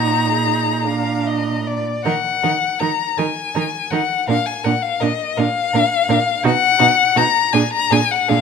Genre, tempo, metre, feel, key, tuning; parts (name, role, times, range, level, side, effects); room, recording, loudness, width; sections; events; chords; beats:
classical, slow romantic movement for string quartet; 50-57 BPM (dotted quarters); 6/8; rubato; Eb minor; A4 = 440 Hz
clear violin; melody; 0.0-8.4 s; Eb5 to Bb5; -17 LUFS; left 8 dB
rich violin; second line; 0.0-8.4 s; F#4 to F5; -28 LUFS; equal
rich viola; accompaniment; 0.0-8.4 s; D4 to Eb4; -23 LUFS; right 7 dB
rich cello; bass; 0.0-8.4 s; Bb2 to Eb3; -22 LUFS; right 5 dB
moderate recital hall reverb, RT60 1.3 s; close, detailed microphones; -15 LUFS; side -6 dB against mid
0.0-8.4 A section
0.0 Ebm/Bb; 0.9 Bb; 2.1 Ebm; 4.3 Bb; 6.4 B; 7.5 Bb7
0.88 | 2.06 3.18 | 4.28 5.38 | 6.44 7.53